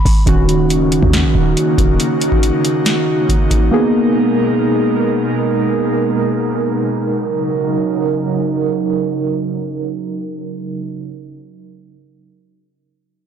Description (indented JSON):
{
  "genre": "hip hop, trap",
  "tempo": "139 BPM",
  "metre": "4/4",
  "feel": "half-time",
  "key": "Eb minor",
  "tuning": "A4 = 440 Hz",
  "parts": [
    { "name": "warm 808-style bass", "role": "bass", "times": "0.0-2.0 s", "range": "Eb1 to Eb2", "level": "-16 LUFS", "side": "equal", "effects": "none" },
    { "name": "booming analog drum machine", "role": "drums", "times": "0.1-3.7 s", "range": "hi-hat, kick drum, snare drum", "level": "-16 LUFS", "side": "equal", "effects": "overdrive" },
    { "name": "muted felt-like synth keys", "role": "accompaniment", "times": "0.3-7.1 s", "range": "Eb3 to Ab4", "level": "-16 LUFS", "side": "right 1 dB", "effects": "chorus, low-pass filter" },
    { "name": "airy breathy pad", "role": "sustained chords", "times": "0.5-10.9 s", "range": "Cb3 to Bb4", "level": "-18 LUFS", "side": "right 2 dB", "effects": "chorus, tremolo, low-pass filter" }
  ],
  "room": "light reverb, digital ambience",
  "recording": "blown-out, overdriven recording, overdrive",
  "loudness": "-14 LUFS",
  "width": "side -8 dB against mid",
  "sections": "0.3-7.2 A section; 7.2-10.6 B section",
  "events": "none",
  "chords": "0.3 Ebm7; 3.7 Abmadd9; 7.2 Ebm7",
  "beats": "| 0.27 0.70 1.13 1.57 | 2.00 2.43 2.86 3.29 | 3.72 4.16 4.59 5.02 | 5.45 5.88 6.31 6.75 | 7.18 7.61 8.04 8.47 | 8.90 9.34 9.77 10.20"
}